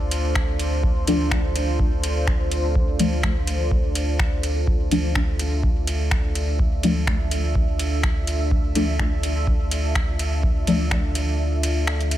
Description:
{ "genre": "dub techno", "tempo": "125 BPM", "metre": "4/4", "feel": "swing 55% on 16ths", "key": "D minor", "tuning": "A4 = 440 Hz", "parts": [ { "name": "deep dark ambient pad", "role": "sustained chords", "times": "0.0-12.2 s", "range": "D4 to E5", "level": "-29 LUFS", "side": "right 1 dB", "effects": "chorus, built-in reverb, sidechain pumping" }, { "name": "warm sub bass", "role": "bass", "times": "0.0-12.2 s", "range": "D2", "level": "-24 LUFS", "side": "equal", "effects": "tube saturation, sidechain pumping" }, { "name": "booming analog drum machine", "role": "drums", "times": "0.1-12.2 s", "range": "finger snaps, hi-hat, ride cymbal", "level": "-28 LUFS", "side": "equal", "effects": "overdrive" }, { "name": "electronic kick drum", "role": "drums", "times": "0.4-11.0 s", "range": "none", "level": "-23 LUFS", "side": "equal", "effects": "overdrive" }, { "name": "deep mellow chord stab", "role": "stabs", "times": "1.1-10.8 s", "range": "F3 to D4", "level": "-24 LUFS", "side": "left 2 dB", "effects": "chorus, phaser, cassette tape, sidechain pumping, dub echo" } ], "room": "light reverb, digital ambience", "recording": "none", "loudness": "-19 LUFS", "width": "side -13 dB against mid", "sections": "0.0-12.2 A section", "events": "filter sweep on synth stab 0.0-12.2; kick drops out 11.4-12.2", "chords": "0.0 Dm" }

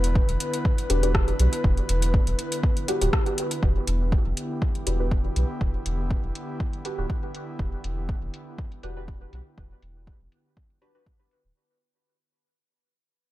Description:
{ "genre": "dub techno", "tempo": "121 BPM", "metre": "4/4", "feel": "swing 53% on 16ths", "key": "E minor", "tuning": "A4 = 441 Hz", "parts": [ { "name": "airy breathy pad", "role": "sustained chords", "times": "0.0-11.5 s", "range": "D3 to B4", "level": "-32 LUFS", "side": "equal", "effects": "chorus, vintage 12-bit sampler grit, sidechain pumping" }, { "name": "soft dub sub bass", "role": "bass", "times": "0.0-11.5 s", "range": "D1 to B1", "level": "-25 LUFS", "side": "equal", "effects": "sidechain pumping" }, { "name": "deep house drum kit", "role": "drums", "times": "0.0-11.4 s", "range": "hi-hat, rim click", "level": "-31 LUFS", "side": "left 1 dB", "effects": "overdrive, low-pass filter on hats, low-pass filter on snare, low-pass filter on room, dub echo" }, { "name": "electronic kick drum", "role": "drums", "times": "0.2-11.2 s", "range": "none", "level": "-24 LUFS", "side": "equal", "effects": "overdrive" }, { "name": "deep mellow chord stab", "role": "stabs", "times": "0.9-11.0 s", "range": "D4 to B4", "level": "-32 LUFS", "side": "equal", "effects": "chorus, phaser, sidechain pumping, dub echo" } ], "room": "digital ambience", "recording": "dark, warm production", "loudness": "-23 LUFS", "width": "side -16 dB against mid", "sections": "0.0-3.6 A section; 3.6-11.6 B section", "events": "filter sweep on synth stab 0.0-3.6; fade-out 3.6-11.6; filter sweep on sub bass 3.6-11.6", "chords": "0.0 Em7" }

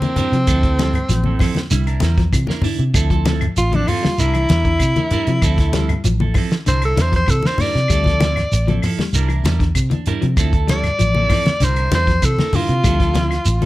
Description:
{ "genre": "afrobeat", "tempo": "97 BPM", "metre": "4/4", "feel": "straight", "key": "D minor", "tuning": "A4 = 440 Hz", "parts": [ { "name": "bright alto saxophone", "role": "melody", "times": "0.0-13.7 s", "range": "C4 to D5", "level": "-20 LUFS", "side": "equal", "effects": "none" }, { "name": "semi-hollow electric guitar", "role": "arpeggios", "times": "0.0-13.7 s", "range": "D3 to G3", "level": "-26 LUFS", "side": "left 5 dB", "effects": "none" }, { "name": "clean electric guitar", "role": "stabs", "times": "0.0-13.7 s", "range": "F3 to Bb4", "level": "-26 LUFS", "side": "right 6 dB", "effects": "phaser" }, { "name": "warm soul drum kit", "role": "drums", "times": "0.0-13.7 s", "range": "hi-hat, kick drum, snare drum", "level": "-21 LUFS", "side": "equal", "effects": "none" }, { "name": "congas", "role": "percussion", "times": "0.0-13.7 s", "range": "none", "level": "-22 LUFS", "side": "left 2 dB", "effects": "none" }, { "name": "fingered electric bass", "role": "bass", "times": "0.2-13.7 s", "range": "A1 to C3", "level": "-18 LUFS", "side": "equal", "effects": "none" }, { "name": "shekere", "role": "percussion", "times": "0.2-13.6 s", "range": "none", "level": "-23 LUFS", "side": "right 2 dB", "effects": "none" }, { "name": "claves", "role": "percussion", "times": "0.5-13.5 s", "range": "none", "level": "-32 LUFS", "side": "left 8 dB", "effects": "none" } ], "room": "light reverb, small room ambience", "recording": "none", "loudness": "-14 LUFS", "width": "side -17 dB against mid", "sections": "0.0-13.7 A section", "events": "alto saxophone solo 0.0-13.7", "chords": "0.5 Dm9; 1.7 C9; 3.0 Dm9; 4.2 C9; 5.4 Dm9; 6.7 C9; 7.9 Dm9; 9.1 C9; 10.4 Dm9; 11.6 C9; 12.8 Dm9" }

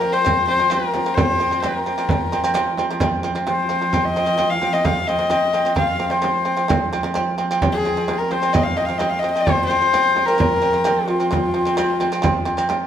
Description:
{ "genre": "mongolian traditional, Mongolian folk", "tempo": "130 BPM", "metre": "4/4", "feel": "straight", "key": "unclear", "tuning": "A4 = 444 Hz", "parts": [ { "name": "rich horsehead fiddle", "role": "melody", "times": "0.0-12.7 s", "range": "F4 to F5", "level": "-20 LUFS", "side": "left 3 dB", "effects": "none" }, { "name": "shamisen", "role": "arpeggios", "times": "0.0-12.9 s", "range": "F3 to C4", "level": "-22 LUFS", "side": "right 3 dB", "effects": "none" }, { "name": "dark horsehead fiddle", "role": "drone", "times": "0.0-12.9 s", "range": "F3", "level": "-30 LUFS", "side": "right 2 dB", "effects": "none" }, { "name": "frame drum", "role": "percussion", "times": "0.0-12.8 s", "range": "none", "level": "-24 LUFS", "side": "right 1 dB", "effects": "none" } ], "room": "wet large studio reverb, RT60 1.4 s", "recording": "band playing live in one room", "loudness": "-17 LUFS", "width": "side -9 dB against mid", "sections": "0.0-12.9 A section", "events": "none", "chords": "0.0 F5" }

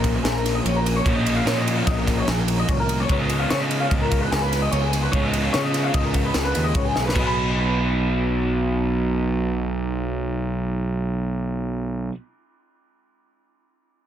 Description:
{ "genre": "math rock and midwest emo", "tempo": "148 BPM", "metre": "5/4", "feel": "straight", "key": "B lydian", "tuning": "A4 = 441 Hz", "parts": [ { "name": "electric guitar through a small old amp", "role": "arpeggios", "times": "0.0-12.2 s", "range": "G#4 to B5", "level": "-26 LUFS", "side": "left 2 dB", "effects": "phaser, tape echo" }, { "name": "crunchy overdriven guitar", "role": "riff", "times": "0.0-12.1 s", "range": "A#2 to F#4", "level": "-25 LUFS", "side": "right 1 dB", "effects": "none" }, { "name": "fuzz picked electric bass", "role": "bass", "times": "0.0-12.1 s", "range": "A#1 to C#3", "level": "-24 LUFS", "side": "equal", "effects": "overdrive" }, { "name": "crisp fusion drum kit", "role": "drums", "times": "0.0-7.3 s", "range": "crash cymbal, kick drum, ride cymbal, snare drum", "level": "-25 LUFS", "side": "equal", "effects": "none" } ], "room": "little or no reverb", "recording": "dense, heavily limited modern master", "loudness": "-20 LUFS", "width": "side -10 dB against mid", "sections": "0.0-7.2 A section; 7.2-11.2 B section", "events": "drum fill 7.0", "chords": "0.0 A#m; 3.1 C#9; 7.2 B" }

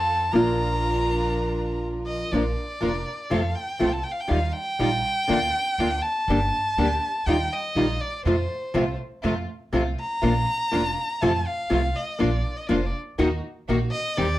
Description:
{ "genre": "tango", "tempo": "121 BPM", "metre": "4/4", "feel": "rubato", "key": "Bb major", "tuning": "A4 = 440 Hz", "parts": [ { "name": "warm violin", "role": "second line", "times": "0.0-14.4 s", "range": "C5 to Bb5", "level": "-26 LUFS", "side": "equal", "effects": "none" }, { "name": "dark chamber string section", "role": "stabs", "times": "0.0-14.4 s", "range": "G3 to Bb4", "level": "-33 LUFS", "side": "right 1 dB", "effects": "none" }, { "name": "upright bass", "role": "bass", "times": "0.0-14.4 s", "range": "F1 to F2", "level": "-27 LUFS", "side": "right 1 dB", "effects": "none" }, { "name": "nylon-string guitar", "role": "accompaniment", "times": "0.3-14.3 s", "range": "C3 to G4", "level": "-24 LUFS", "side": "left 1 dB", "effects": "none" } ], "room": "moderate club reverb, RT60 0.7 s", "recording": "none", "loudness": "-22 LUFS", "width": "side -15 dB against mid", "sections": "0.0-2.3 A section; 2.3-14.4 A section", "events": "violin solo 0.0-2.3, 2.3-14.4", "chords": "0.3 Bb; 3.3 F; 4.3 Ebadd9; 5.3 Bb/D; 6.3 Gm; 7.3 Ebadd9; 8.2 F; 10.2 Bb; 11.2 F; 12.2 Bb; 13.2 Ebm" }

